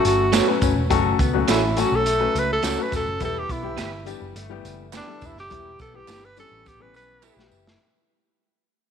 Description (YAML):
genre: uptempo 1960s-style soul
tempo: 104 BPM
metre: 4/4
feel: straight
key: E dorian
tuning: A4 = 440 Hz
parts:
  - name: breathy tenor saxophone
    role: melody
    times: 0.0-7.5 s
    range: D4 to B4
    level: -25 LUFS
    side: right 1 dB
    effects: none
  - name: clear upright piano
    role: accompaniment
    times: 0.0-7.6 s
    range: E3 to B4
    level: -26 LUFS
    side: left 10 dB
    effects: none
  - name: electric guitar through a small old amp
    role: riff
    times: 0.0-7.8 s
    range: A3 to F#4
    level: -31 LUFS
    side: left 9 dB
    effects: none
  - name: vintage muted picked electric bass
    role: bass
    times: 0.0-7.7 s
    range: E1 to C#2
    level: -28 LUFS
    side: right 1 dB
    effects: tube saturation
  - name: crunchy breakbeat drum kit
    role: drums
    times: 0.0-7.8 s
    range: hi-hat, kick drum, snare drum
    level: -26 LUFS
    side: right 1 dB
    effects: none
  - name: tambourine and handclaps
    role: percussion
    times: 0.1-7.7 s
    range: none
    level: -34 LUFS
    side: right 11 dB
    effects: none
  - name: electric guitar through a small old amp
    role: stabs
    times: 0.3-7.4 s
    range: A3 to B4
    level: -28 LUFS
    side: right 10 dB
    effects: none
room: moderate echo chamber reverb, RT60 2.3 s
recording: 1960s-style stereo with parts hard left and right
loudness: -19 LUFS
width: side -7 dB against mid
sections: 0.0-7.8 A section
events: fade-out 0.0-7.8; tenor saxophone solo 0.0-7.8; drum fill 7.2-7.8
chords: 0.0 F#m; 3.2 Em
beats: 0.33 | 0.91 1.48 2.06 2.63 | 3.21 3.79 4.36 4.94 | 5.51 6.09 6.67 7.24